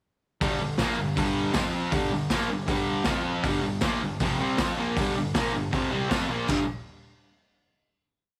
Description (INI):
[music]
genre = garage rock duo or trio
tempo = 159 BPM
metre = 4/4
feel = straight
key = unclear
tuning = A4 = 441 Hz
[part]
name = fuzz guitar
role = riff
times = 0.4-6.6 s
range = F2 to F4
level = -28 LUFS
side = equal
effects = distortion
[part]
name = raw garage drum kit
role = drums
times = 0.4-6.6 s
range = crash cymbal, hi-hat, kick drum, snare drum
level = -31 LUFS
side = equal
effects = none
[part]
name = tambourine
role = percussion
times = 0.8-6.7 s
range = none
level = -46 LUFS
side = equal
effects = none
[sound]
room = light reverb, small room ambience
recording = none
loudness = -27 LUFS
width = mono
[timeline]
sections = 0.4-6.5 riff; 6.5-8.0 final chord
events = none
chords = 0.4 G5; 1.6 F5; 1.9 G5; 3.1 F5; 3.5 G5